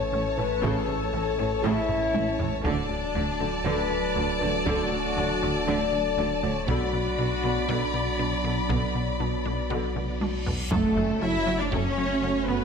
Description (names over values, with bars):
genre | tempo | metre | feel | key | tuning
cinematic, hybrid orchestral and electronic film score | 119 BPM | 4/4 | straight | F# minor | A4 = 439 Hz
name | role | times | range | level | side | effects
warm studio violin section | melody | 0.0-12.6 s | F#4 to B5 | -35 LUFS | left 4 dB | none
rich chamber violin section | second line | 0.0-12.6 s | A4 to E5 | -33 LUFS | left 2 dB | none
dark French horn section | sustained chords | 0.0-12.6 s | A3 to D5 | -30 LUFS | left 5 dB | none
mellow trombone section | sustained chords | 0.0-12.6 s | E3 to D4 | -36 LUFS | right 5 dB | none
warbly tape-like pad | sustained chords | 0.0-12.6 s | E3 to D5 | -35 LUFS | equal | chorus, built-in reverb
plucky analog bass | riff | 0.0-12.6 s | D2 to F#3 | -34 LUFS | left 3 dB | none
saturated sub bass | bass | 0.0-12.6 s | D1 to B1 | -35 LUFS | equal | none
rich studio viola section | accompaniment | 0.1-12.6 s | C#3 to E4 | -36 LUFS | right 2 dB | none
resonant blip pluck | arpeggios | 0.1-12.6 s | D3 to D4 | -40 LUFS | equal | none
rich studio double bass section | bass | 0.1-12.6 s | F#1 to D2 | -34 LUFS | right 5 dB | none
rich symphonic cello section | bass | 0.1-12.6 s | A2 to E4 | -32 LUFS | right 3 dB | none
taiko ensemble | drums | 0.6-12.5 s | none | -34 LUFS | equal | none
reverse cymbal and impact | sound effects | 10.2-12.6 s | none | -36 LUFS | equal | none
room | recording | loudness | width
moderate scoring stage reverb, RT60 1.6 s | none | -24 LUFS | side -6 dB against mid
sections
0.0-10.7 A section; 10.7-12.6 B section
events
drum fill 1.9-2.7, 10.0-10.7; reverse cymbal 10.2-10.7; impact 10.7-12.6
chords
0.0 A; 2.7 D; 6.7 Bm; 10.7 F#m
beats
0.13 | 0.64 1.14 1.64 2.15 | 2.65 3.16 3.66 4.16 | 4.67 5.17 5.68 6.18 | 6.68 7.19 7.69 8.20 | 8.70 9.21 9.71 10.21 | 10.72 11.22 11.73 12.23